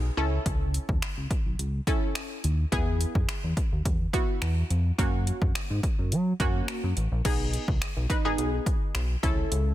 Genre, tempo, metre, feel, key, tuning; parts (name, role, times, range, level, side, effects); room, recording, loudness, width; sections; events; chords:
dance-pop; 106 BPM; 4/4; straight; B major; A4 = 436 Hz
chorused synth bass; bass; 0.0-9.7 s; G#1 to F#3; -27 LUFS; equal; sidechain pumping
analog pluck; accompaniment; 0.2-9.7 s; A#3 to B4; -32 LUFS; equal; chorus, sidechain pumping
deep house drum kit; drums; 0.5-9.7 s; crash cymbal, finger snaps, hi-hat, kick drum; -28 LUFS; equal; overdrive, soft clipping on snare
little or no reverb; dense, heavily limited modern master; -25 LUFS; side -14 dB against mid
0.0-7.2 A section; 7.2-9.7 B section
0.2 A/C#; 2.7 E; 5.0 F#; 7.2 B6; 9.2 A/C#